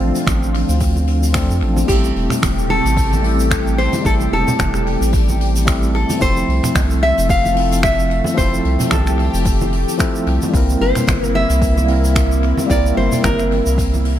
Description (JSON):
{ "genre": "sunset chillout", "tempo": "111 BPM", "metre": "4/4", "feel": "swing 56% on 16ths", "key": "unclear", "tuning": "A4 = 440 Hz", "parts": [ { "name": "nylon-string guitar", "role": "melody", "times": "0.0-14.2 s", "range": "F4 to F5", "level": "-21 LUFS", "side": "left 1 dB", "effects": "dub echo, shimmer reverb" }, { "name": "bright tine electric piano", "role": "accompaniment", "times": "0.0-14.2 s", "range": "F3 to Bb4", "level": "-21 LUFS", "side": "left 1 dB", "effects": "medium tremolo, auto-pan, dub echo, shimmer reverb" }, { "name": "lush unison pad", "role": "sustained chords", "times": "0.0-14.2 s", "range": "C3 to G4", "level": "-25 LUFS", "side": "equal", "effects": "chorus, phaser, shimmer reverb" }, { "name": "round analog bass", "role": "bass", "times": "0.0-14.2 s", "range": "E1 to F2", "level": "-18 LUFS", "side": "equal", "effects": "none" }, { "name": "soft brush drum kit", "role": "drums", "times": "0.0-14.2 s", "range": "crash cymbal, finger snaps, hi-hat, shaker", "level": "-26 LUFS", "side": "equal", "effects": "analog delay" }, { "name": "electronic kick drum", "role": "drums", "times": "0.3-13.9 s", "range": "none", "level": "-20 LUFS", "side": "equal", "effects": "overdrive" }, { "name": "congas", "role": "percussion", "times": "0.3-14.0 s", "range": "none", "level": "-26 LUFS", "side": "right 3 dB", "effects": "none" } ], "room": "moderate spring reverb, RT60 1.5 s", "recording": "echo-heavy mix", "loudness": "-14 LUFS", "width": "side -11 dB against mid", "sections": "0.0-1.9 A section; 1.9-14.2 B section", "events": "none", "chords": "0.0 Dm7; 1.9 Am7; 6.2 Fmaj7; 10.5 C7", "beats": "0.27 0.81 1.35 | 1.89 2.43 2.97 3.51 | 4.05 4.59 5.13 5.67 | 6.21 6.75 7.29 7.83 | 8.38 8.92 9.46 10.00 | 10.54 11.08 11.62 12.16 | 12.70 13.24 13.78" }